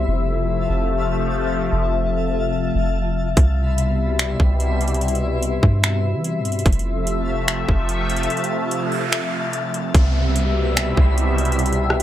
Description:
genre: hip hop, atmospheric cloud-rap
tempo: 146 BPM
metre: 4/4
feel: half-time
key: C major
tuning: A4 = 440 Hz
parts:
  - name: sweeping resonant pad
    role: sustained chords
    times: 0.0-12.0 s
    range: B2 to E5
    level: -22 LUFS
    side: left 2 dB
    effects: chorus, sidechain pumping
  - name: soft 808-style bass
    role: bass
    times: 0.0-12.0 s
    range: F1 to E3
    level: -21 LUFS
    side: equal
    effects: none
  - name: twinkling granular texture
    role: texture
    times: 0.0-12.0 s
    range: E4 to B5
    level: -31 LUFS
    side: equal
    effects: built-in reverb
  - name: trap drum kit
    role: drums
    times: 3.4-12.0 s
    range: finger snaps, hi-hat, kick drum, rim click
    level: -20 LUFS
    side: equal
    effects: overdrive
  - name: noise sweep and downlifter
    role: sound effects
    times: 8.6-12.0 s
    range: none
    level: -29 LUFS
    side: right 2 dB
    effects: none
room: light reverb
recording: none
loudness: -18 LUFS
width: side -12 dB against mid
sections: 0.0-9.9 A section; 9.9-12.0 B section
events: kick muted 8.3-9.9; noise sweep 8.6-9.9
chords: 0.1 Fmaj7; 3.4 Cmaj7; 6.7 Fmaj7; 9.9 Cmaj7

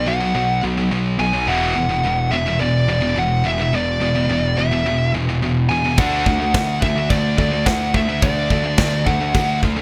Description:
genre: heavy metal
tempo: 107 BPM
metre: 4/4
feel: straight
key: unclear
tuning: A4 = 440 Hz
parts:
  - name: high-gain lead guitar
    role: melody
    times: 0.0-9.6 s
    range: D5 to G#5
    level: -24 LUFS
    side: equal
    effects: distortion
  - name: heavy high-gain guitar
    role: riff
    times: 0.0-9.8 s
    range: E2 to D4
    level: -27 LUFS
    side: equal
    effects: distortion
  - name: heavy high-gain guitar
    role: riff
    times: 0.0-9.8 s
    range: E2 to D4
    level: -25 LUFS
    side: equal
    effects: distortion
  - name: fuzz picked electric bass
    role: bass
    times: 0.0-9.8 s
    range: E1 to D2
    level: -25 LUFS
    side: equal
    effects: overdrive
  - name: big rock drum kit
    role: drums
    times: 6.0-9.8 s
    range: crash cymbal, kick drum, snare drum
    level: -22 LUFS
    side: equal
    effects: none
room: little or no reverb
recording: none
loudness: -18 LUFS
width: mono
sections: 0.0-9.8 A section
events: none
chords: 0.0 B5; 1.5 E5; 6.0 D

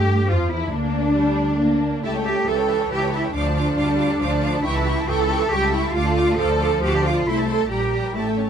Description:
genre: quick classical-period movement for string orchestra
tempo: 138 BPM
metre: 3/4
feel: rubato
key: D minor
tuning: A4 = 439 Hz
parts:
  - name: rich studio violin section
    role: melody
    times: 0.0-8.5 s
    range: D4 to D6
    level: -31 LUFS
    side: left 2 dB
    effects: none
  - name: rich studio violin section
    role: second line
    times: 0.0-8.5 s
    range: D4 to G5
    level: -28 LUFS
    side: left 1 dB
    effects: none
  - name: rich studio viola section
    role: accompaniment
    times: 0.0-8.5 s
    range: E3 to Bb3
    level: -26 LUFS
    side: left 1 dB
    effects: none
  - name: rich studio cello section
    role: bass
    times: 0.0-8.5 s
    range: C#4 to A4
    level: -22 LUFS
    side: right 2 dB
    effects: none
  - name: warm studio double bass section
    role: bass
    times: 0.0-8.5 s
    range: A1 to G2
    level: -24 LUFS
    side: right 1 dB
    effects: none
room: light reverb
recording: minimal, uncompressed stereo recording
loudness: -18 LUFS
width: side -8 dB against mid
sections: 0.0-8.5 A section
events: none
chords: 0.0 Dm (rootless); 0.7 Gm/D; 2.0 A7/C#; 3.3 Dm; 4.6 A7/C#; 5.9 Dm; 7.3 Am/C; 7.7 Gm/Bb

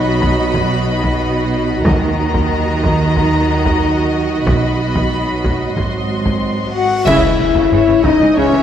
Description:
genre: cinematic, epic orchestral film score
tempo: 92 BPM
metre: 4/4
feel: straight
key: unclear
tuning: A4 = 440 Hz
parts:
  - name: warm symphonic violin section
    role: melody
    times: 0.0-8.6 s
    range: C#5 to C6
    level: -23 LUFS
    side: left 3 dB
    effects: none
  - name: warm symphonic violin section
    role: second line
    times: 0.0-8.6 s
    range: C#5 to E5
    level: -24 LUFS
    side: left 2 dB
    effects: none
  - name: rich symphonic viola section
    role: accompaniment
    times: 0.0-8.6 s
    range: C#3 to Gb4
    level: -24 LUFS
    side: right 3 dB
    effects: none
  - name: warm French horn section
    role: sustained chords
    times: 0.0-8.6 s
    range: Gb3 to Gb4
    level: -18 LUFS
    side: left 3 dB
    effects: none
  - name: rich symphonic cello section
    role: bass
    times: 0.0-8.6 s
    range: Ab2 to Eb3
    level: -22 LUFS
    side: right 3 dB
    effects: none
  - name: warm symphonic double bass section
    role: bass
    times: 0.0-8.4 s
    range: Ab1 to Eb2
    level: -21 LUFS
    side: right 3 dB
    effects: none
  - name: taiko ensemble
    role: drums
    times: 0.2-8.6 s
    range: none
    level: -20 LUFS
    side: equal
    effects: none
  - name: timpani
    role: percussion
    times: 1.9-2.8 s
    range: Eb3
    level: -25 LUFS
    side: equal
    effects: none
  - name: cymbal swell, clash cymbals and concert bass drum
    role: percussion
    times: 4.5-8.3 s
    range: none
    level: -26 LUFS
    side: equal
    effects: none
  - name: reverse cymbal and impact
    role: sound effects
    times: 6.5-8.6 s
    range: none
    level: -32 LUFS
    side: equal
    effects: none
  - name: silver concert flute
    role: second line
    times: 6.7-8.6 s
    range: C#5 to Gb5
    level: -24 LUFS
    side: left 2 dB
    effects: none
  - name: warm trumpet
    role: stabs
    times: 6.7-8.6 s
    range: C#4 to Gb4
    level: -23 LUFS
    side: right 1 dB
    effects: none
  - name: warm trombone section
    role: sustained chords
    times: 7.1-8.6 s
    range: E3 to G#3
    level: -27 LUFS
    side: right 3 dB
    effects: none
room: moderate concert hall reverb, RT60 1.9 s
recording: none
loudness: -13 LUFS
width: side -9 dB against mid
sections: 0.0-7.1 A section; 7.1-8.6 B section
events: reverse cymbal 6.5-7.1; band accent 7.1-7.7; impact 7.1-8.6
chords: 0.0 B; 1.9 Ebm; 4.5 B; 5.8 Ab7; 7.1 C#m

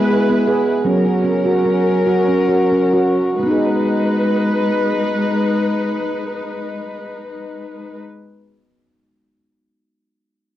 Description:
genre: world meditative, meditative tuned percussion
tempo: 64-82 BPM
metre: 3/4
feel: straight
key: G# minor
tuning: A4 = 439 Hz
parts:
  - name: dark chamber string section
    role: sustained chords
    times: 0.0-8.0 s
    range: F#3 to B4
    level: -18 LUFS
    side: left 1 dB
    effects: cassette tape
  - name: handpan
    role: arpeggios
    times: 0.0-8.1 s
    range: F#3 to G#4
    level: -18 LUFS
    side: right 2 dB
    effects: cassette tape
room: moderate small room reverb, RT60 0.5 s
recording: home recording on cassette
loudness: -15 LUFS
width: side -13 dB against mid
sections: 0.0-3.4 A section; 3.4-9.0 B section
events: slowing down 0.0-3.4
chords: 0.0 E/G#; 0.8 F#; 3.4 G#m

